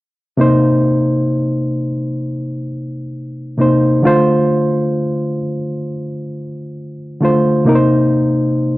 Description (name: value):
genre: hip hop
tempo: 66 BPM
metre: 4/4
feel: swing 66% on 16ths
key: C dorian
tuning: A4 = 440 Hz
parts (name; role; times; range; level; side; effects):
- barky reed electric piano; accompaniment; 0.4-8.8 s; C3 to C5; -14 LUFS; equal; cassette tape, low-pass filter
room: wet studio reverb, RT60 0.6 s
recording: worn, warbling old tape, cassette tape, warbly pitch drift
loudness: -13 LUFS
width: side -19 dB against mid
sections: 0.4-8.8 A section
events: none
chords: 0.4 Cm7; 4.0 Dm7; 7.7 Cm7